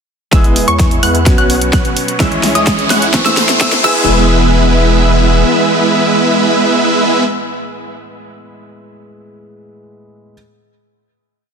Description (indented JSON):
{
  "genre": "EDM, festival progressive house",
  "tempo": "128 BPM",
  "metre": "4/4",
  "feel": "straight",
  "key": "E major",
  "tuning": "A4 = 440 Hz",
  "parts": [
    { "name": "warm baby grand piano", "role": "accompaniment", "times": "0.3-10.3 s", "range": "A2 to G#4", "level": "-21 LUFS", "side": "equal", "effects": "sidechain pumping, dub echo" },
    { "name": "lush unison pad", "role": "sustained chords", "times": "0.3-7.2 s", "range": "E3 to E6", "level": "-21 LUFS", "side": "equal", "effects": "chorus, sidechain pumping" },
    { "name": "wide unison pluck", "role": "arpeggios", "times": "0.3-7.2 s", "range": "C#6 to F#6", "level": "-18 LUFS", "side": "equal", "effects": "sidechain pumping, dub echo" },
    { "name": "supersaw chords", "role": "riff", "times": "0.3-7.2 s", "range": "G#3 to F#5", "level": "-13 LUFS", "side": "right 1 dB", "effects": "vintage 12-bit sampler grit, sidechain pumping, low-pass filter, dub echo" },
    { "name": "saturated sub bass", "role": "bass", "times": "0.3-5.4 s", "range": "E1 to E2", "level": "-16 LUFS", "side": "equal", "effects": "sidechain pumping" },
    { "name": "big-room dance drum kit", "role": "drums", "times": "0.3-3.9 s", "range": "crash cymbal, hi-hat, snare drum", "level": "-17 LUFS", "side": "equal", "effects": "overdrive" },
    { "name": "electronic kick drum", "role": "drums", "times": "0.3-3.9 s", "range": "none", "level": "-13 LUFS", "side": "equal", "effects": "overdrive" },
    { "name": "riser", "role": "sound effects", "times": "1.6-4.1 s", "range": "none", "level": "-20 LUFS", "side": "equal", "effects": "none" }
  ],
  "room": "moderate lush hall reverb, RT60 2.2 s",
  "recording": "dense, heavily limited modern master, high-pass filter",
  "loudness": "-9 LUFS",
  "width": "side -6 dB against mid",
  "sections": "0.3-4.1 build; 4.1-7.8 final hit",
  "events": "build-up 0.3-4.1; drum fill 0.3-4.1; filter sweep on supersaw synth 0.3-4.1; filter sweep 0.3-4.1; riser 1.6-4.1",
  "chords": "0.3 E; 1.3 Bsus2; 2.2 C#m; 3.1 Am; 3.8 E",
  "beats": "| 0.33 0.80 1.26 1.73 | 2.20 2.67 3.14 3.61 | 4.08 4.54 5.01 5.48 | 5.95 6.42 6.89 7.36"
}